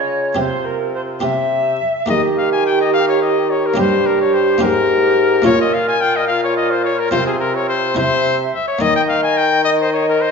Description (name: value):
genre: classical, renaissance-style consort dance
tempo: 72 BPM (dotted quarters)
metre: 6/8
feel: straight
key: unclear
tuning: A4 = 440 Hz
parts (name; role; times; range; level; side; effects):
- clear cornet; melody; 0.0-10.3 s; F4 to Ab5; -18 LUFS; left 4 dB; none
- mellow alto recorder; second line; 0.0-10.3 s; F4 to E5; -18 LUFS; right 2 dB; none
- buff-stop harpsichord; accompaniment; 0.0-10.3 s; G2 to Bb4; -20 LUFS; equal; none
- mellow bassoon; bass; 0.0-10.3 s; G2 to Eb3; -21 LUFS; equal; none
room: wet recital hall reverb, RT60 1.4 s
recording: heard from further back in the room, nothing above 7.8 kHz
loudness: -14 LUFS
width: side -5 dB against mid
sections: 0.0-2.1 A section; 2.1-10.3 A section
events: none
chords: 0.4 Csus4; 2.1 Eb; 3.8 Gdim; 5.5 Bbm; 7.1 Csus4; 8.0 C; 8.8 Eb5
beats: | 0.38 1.23 | 2.09 2.93 | 3.78 4.62 | 5.46 6.29 | 7.13 7.97 | 8.81 9.65